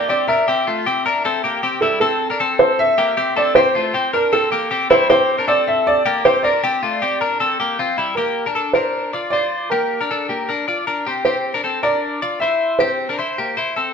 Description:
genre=indie pop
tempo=156 BPM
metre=4/4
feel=straight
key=unclear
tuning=A4 = 440 Hz
part: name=dark upright piano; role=melody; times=0.0-13.5 s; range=A4 to E5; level=-17 LUFS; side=right 1 dB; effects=none
part: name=twelve-string electric guitar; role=arpeggios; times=0.0-13.9 s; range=G3 to D5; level=-19 LUFS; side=left 3 dB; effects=none
room=wet stone room reverb, RT60 0.9 s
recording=band playing live in one room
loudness=-16 LUFS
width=side -6 dB against mid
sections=0.0-8.2 A section; 8.2-13.9 B section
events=none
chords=0.0 Cadd9; 8.2 Gm7; 11.1 Cadd9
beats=0.09 | 0.48 0.86 1.25 1.63 | 2.02 2.40 2.79 3.17 | 3.56 3.94 4.32 4.71 | 5.09 5.48 5.86 6.25 | 6.63 7.02 7.40 7.79 | 8.17 8.56 8.94 9.33 | 9.71 10.10 10.49 10.87 | 11.26 11.64 12.03 12.42 | 12.80 13.19 13.57

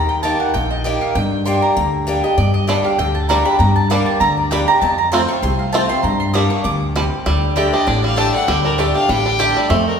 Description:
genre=bluegrass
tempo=197 BPM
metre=4/4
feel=swing 55% on 8ths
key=G minor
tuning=A4 = 440 Hz
part: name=picked acoustic archtop guitar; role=accompaniment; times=0.0-10.0 s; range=F2 to G4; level=-19 LUFS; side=left 1 dB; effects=none
part: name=mandolin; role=stabs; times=0.0-9.5 s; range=A3 to Eb6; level=-20 LUFS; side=right 2 dB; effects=none
part: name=upright bass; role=bass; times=0.0-10.0 s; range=A1 to G2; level=-20 LUFS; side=equal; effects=none
part: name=bluegrass banjo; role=melody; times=2.7-10.0 s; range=D3 to G4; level=-21 LUFS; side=right 2 dB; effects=none
part: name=clear fiddle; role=melody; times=7.7-10.0 s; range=Bb4 to A5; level=-20 LUFS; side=left 3 dB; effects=none
room=wet recital hall reverb, RT60 1.7 s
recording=recorded in a church or concert hall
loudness=-14 LUFS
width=side -6 dB against mid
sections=0.0-7.3 A section; 7.3-10.0 A section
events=mandolin solo 0.0-7.3; fiddle solo 7.3-10.0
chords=0.0 Eb; 1.2 Gm; 4.8 F; 6.0 Gm; 7.3 Dsus4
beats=0.24 0.54 0.85 | 1.16 1.46 1.77 2.07 | 2.38 2.68 2.99 3.29 | 3.60 3.90 4.21 4.52 | 4.82 5.13 5.43 5.74 | 6.04 6.35 6.65 6.96 | 7.26 7.57 7.87 8.18 | 8.48 8.79 9.09 9.40 | 9.70

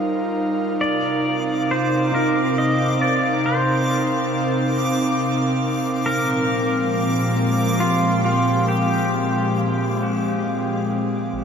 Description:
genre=ambient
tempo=68 BPM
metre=3/4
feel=straight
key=unclear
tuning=A4 = 439 Hz
part: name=airy breathy pad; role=sustained chords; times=0.0-11.4 s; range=Bb2 to F5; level=-20 LUFS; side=equal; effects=chorus
part: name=felt-muted upright piano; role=arpeggios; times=0.0-11.4 s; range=Eb4 to F5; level=-35 LUFS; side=left 1 dB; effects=none
part: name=pedal steel guitar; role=melody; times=0.8-10.4 s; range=F4 to Eb5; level=-24 LUFS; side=left 1 dB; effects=ping-pong delay
part: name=backwards swelling texture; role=texture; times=1.4-11.4 s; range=D6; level=-29 LUFS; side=equal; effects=built-in reverb
part: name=warm sub bass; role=bass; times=11.3-11.4 s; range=Ab1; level=-34 LUFS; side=left 1 dB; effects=none
room=wet huge ambient reverb, RT60 7.4 s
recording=none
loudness=-18 LUFS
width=side -7 dB against mid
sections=0.0-11.3 A section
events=none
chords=0.0 Ebmaj9/G; 0.8 Cm7; 6.0 Bb13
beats=| 0.79 1.67 2.56 | 3.43 4.30 5.17 | 6.05 6.92 7.79 | 8.66 9.54 10.44 | 11.34

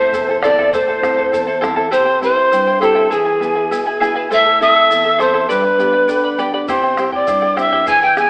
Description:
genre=andean folk, Andean ensemble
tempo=101 BPM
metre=2/4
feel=straight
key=A minor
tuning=A4 = 439 Hz
part: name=bright polished pan flute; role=melody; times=0.0-8.3 s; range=G#4 to G#5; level=-17 LUFS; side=equal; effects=none
part: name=breathy bright quena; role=second line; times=0.0-8.3 s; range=C5 to G#6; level=-21 LUFS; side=equal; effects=none
part: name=charango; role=accompaniment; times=0.0-8.3 s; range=E4 to B5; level=-23 LUFS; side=equal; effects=none
part: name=nylon-string guitar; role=accompaniment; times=0.0-8.3 s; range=E2 to A4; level=-26 LUFS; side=equal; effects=none
part: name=bombo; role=percussion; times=0.1-1.9, 6.7-8.3 s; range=none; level=-31 LUFS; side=equal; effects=none
part: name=tube shaker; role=percussion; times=0.1-8.3 s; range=none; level=-44 LUFS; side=equal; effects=none
room=wet recital hall reverb, RT60 1.6 s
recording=AM radio sound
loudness=-15 LUFS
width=mono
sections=0.0-1.9 A section; 1.9-8.3 A section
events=none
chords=0.0 Am; 1.9 C; 3.1 E; 4.3 Am; 5.5 G; 6.7 C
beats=0.14 | 0.74 1.33 | 1.93 2.52 | 3.12 3.71 | 4.30 4.90 | 5.49 6.09 | 6.68 7.28 | 7.87

